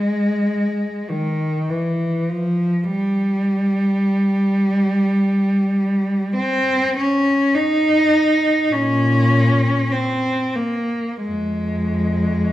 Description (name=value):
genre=classical, free, expressive piece for unaccompanied cello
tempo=42-55 BPM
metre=4/4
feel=rubato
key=unclear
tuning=A4 = 440 Hz
part: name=rich cello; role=solo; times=0.0-12.5 s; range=F2 to Eb4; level=-16 LUFS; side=equal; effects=none
room=wet recital hall reverb, RT60 1.7 s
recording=none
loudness=-16 LUFS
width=side -14 dB against mid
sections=0.0-12.5 A section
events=none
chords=none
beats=0.52 | 1.70 2.85 3.94 5.06 | 6.35 7.54 8.70 9.91 | 11.26